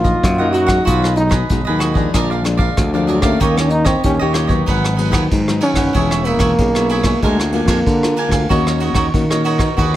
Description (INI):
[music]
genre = samba and choro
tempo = 94 BPM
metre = 4/4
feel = straight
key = Eb harmonic minor, G# minor from 4.7 s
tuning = A4 = 442 Hz
[part]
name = breathy trombone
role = melody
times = 0.0-8.8 s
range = F3 to Gb4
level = -18 LUFS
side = right 1 dB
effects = none
[part]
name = cavaquinho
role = accompaniment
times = 0.0-10.0 s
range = D4 to G#5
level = -22 LUFS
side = right 4 dB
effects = none
[part]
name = nylon-string guitar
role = accompaniment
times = 0.0-10.0 s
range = F2 to A#4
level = -22 LUFS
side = left 5 dB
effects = none
[part]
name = growling fingered electric bass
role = bass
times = 0.0-10.0 s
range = E1 to D#3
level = -18 LUFS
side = equal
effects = overdrive
[part]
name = vintage brush drum kit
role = drums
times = 0.0-9.9 s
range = hi-hat, kick drum, ride cymbal, rim click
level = -19 LUFS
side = equal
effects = none
[sound]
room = moderate large studio reverb, RT60 0.9 s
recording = none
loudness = -13 LUFS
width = side -13 dB against mid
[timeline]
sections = 0.0-4.7 A section; 4.7-10.0 B section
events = trombone solo 0.0-4.7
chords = 0.0 Ebm/Bb; 0.9 Abm7/Cb; 2.1 Bb7; 3.4 Eb7; 4.7 G#m7; 6.0 E6; 7.2 A#7/D; 8.5 D#m7